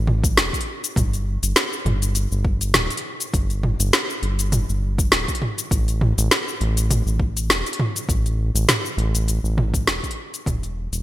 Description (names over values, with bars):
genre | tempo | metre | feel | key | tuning
organic downtempo | 101 BPM | 4/4 | swing 55% on 16ths | unclear | A4 = 435 Hz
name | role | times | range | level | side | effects
round analog bass | bass | 0.0-11.0 s | D1 to A1 | -22 LUFS | equal | sidechain pumping
deep house drum kit | drums | 0.1-11.0 s | cabasa, hi-hat, snare drum, toms | -21 LUFS | equal | small room reverb
electronic kick drum | drums | 0.2-10.6 s | none | -23 LUFS | equal | small room reverb
room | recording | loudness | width
light reverb, digital ambience | bright 1980s-style digital production | -19 LUFS | side -14 dB against mid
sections
0.0-11.0 A section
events
fade-out 8.9-11.0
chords
none